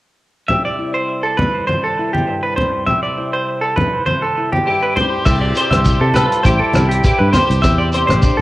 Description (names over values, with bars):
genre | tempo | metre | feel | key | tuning
highlife guitar band | 101 BPM | 4/4 | swing 55% on 16ths | C major | A4 = 440 Hz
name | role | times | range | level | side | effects
nylon-string guitar | accompaniment | 0.5-8.4 s | G2 to G4 | -25 LUFS | left 2 dB | cassette tape
semi-hollow electric guitar | arpeggios | 0.5-8.4 s | G4 to E5 | -18 LUFS | right 1 dB | spring reverb, cassette tape, tape echo
congas | percussion | 0.5-8.2 s | none | -21 LUFS | equal | none
clean electric guitar | melody | 4.7-8.4 s | G4 to C5 | -19 LUFS | left 1 dB | ensemble chorus, tape echo
brilliant trumpet | second line | 4.7-8.4 s | E4 to G4 | -25 LUFS | left 2 dB | cassette tape
fingered electric bass | bass | 5.3-8.4 s | A1 to C3 | -16 LUFS | equal | none
warm soul drum kit | drums | 5.3-8.4 s | crash cymbal, hi-hat, kick drum, rim click | -18 LUFS | equal | cassette tape
shekere | percussion | 5.3-8.4 s | none | -25 LUFS | right 1 dB | none
room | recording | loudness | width
light reverb | home recording on cassette | -13 LUFS | side -17 dB against mid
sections
0.5-5.3 A section; 5.3-8.4 B section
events
none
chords
0.5 C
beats
| 0.49 1.08 1.68 2.28 | 2.88 3.47 4.07 4.66 | 5.26 5.85 6.44 7.04 | 7.63 8.22